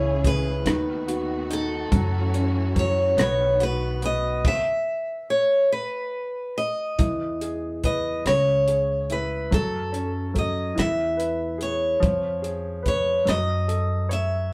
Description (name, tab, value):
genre	acoustic folk-pop ballad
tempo	48 BPM (dotted quarters)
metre	6/8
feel	straight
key	E major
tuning	A4 = 439 Hz
part	picked steel-string acoustic guitar	melody	0.0-14.5 s	A4 to E5	-27 LUFS	equal	none
part	warm upright piano	accompaniment	0.0-14.5 s	C#3 to C#5	-32 LUFS	equal	none
part	muted studio string section	sustained chords	0.0-4.4 s	D#3 to G#4	-35 LUFS	equal	none
part	upright bass	bass	0.0-14.5 s	B1 to F#2	-30 LUFS	equal	none
part	compact cocktail drum kit	drums	0.2-14.3 s	crash cymbal, hi-hat, kick drum, rim click	-28 LUFS	equal	none
room	wet studio reverb, RT60 0.5 s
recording	band playing live in one room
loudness	-24 LUFS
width	mono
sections	0.0-7.0 A section; 7.0-14.5 A section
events	stop 4.4-7.0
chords	0.0 Amaj7/C#; 0.7 B7/D#; 1.9 F#m7; 3.2 B7; 4.4 N.C.; 7.0 Emaj7; 8.3 C#m; 9.5 F#m; 10.8 E; 12.0 C#7/E#; 13.3 F#m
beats	0.66 | 1.92 3.18 | 4.44 5.71 | 6.99 8.26 | 9.52 10.77 | 12.03 13.28